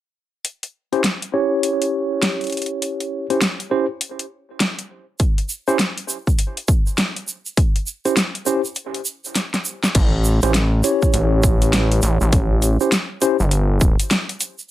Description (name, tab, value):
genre	glitch hop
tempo	101 BPM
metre	4/4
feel	swing 62% on 16ths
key	unclear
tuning	A4 = 440 Hz
part	dubstep drum kit	drums	0.4-14.6 s	crash cymbal, hi-hat, snare drum	-21 LUFS	equal	none
part	tine electric piano	stabs	0.9-13.4 s	C#4 to C#5	-21 LUFS	equal	medium stereo tremolo, sidechain pumping, low-pass filter, tape echo
part	electronic kick drum	drums	5.2-14.0 s	none	-17 LUFS	equal	none
part	egg shaker	percussion	5.2-14.7 s	none	-27 LUFS	right 4 dB	none
part	gritty driven synth bass	bass	9.9-14.0 s	G1 to A1	-17 LUFS	equal	none
room	light reverb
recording	none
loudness	-17 LUFS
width	side -14 dB against mid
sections	0.4-9.9 A section; 9.9-14.7 B section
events	filter sweep on tine electric piano 0.4-9.9, 9.9-14.7; break 8.8-9.9; drum fill 9.4-9.9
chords	0.4 C#dim; 9.9 A7